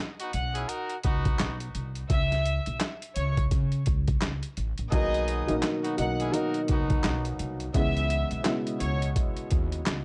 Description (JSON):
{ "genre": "hip hop, boom-bap hip-hop", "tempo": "85 BPM", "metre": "4/4", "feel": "swing 60% on 16ths", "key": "B major", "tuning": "A4 = 439 Hz", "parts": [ { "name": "clear trumpet section", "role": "stabs", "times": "0.2-7.2 s", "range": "B3 to A#4", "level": "-38 LUFS", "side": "equal", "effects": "high-pass filter, low-pass filter, analog delay" }, { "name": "boom bap sampler-style drum kit", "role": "drums", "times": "0.2-10.0 s", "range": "handclaps, hi-hat, kick drum, snare drum", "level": "-30 LUFS", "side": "equal", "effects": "none" }, { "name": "warm chamber violin section", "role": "melody", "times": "0.3-9.0 s", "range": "C#5 to F#6", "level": "-36 LUFS", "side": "equal", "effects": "high-pass filter, low-pass filter, analog delay" }, { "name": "upright bass", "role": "bass", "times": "0.3-10.0 s", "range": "A1 to C#3", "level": "-32 LUFS", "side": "equal", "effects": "transformer saturation" }, { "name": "dark upright piano", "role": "accompaniment", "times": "4.9-10.0 s", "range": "B2 to E4", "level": "-32 LUFS", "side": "equal", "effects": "cassette tape, high-pass filter, low-pass filter" } ], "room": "little or no reverb", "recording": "dry, gritty hardware recording", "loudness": "-28 LUFS", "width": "mono", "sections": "0.0-10.0 A section", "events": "break 0.0-4.9", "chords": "0.0 Bmaj7; 2.1 C#m; 4.9 Bmaj7; 7.7 C#m7", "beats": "0.69 1.39 | 2.10 2.81 3.51 4.22 | 4.92 5.63 6.33 7.04 | 7.75 8.45 9.16 9.86" }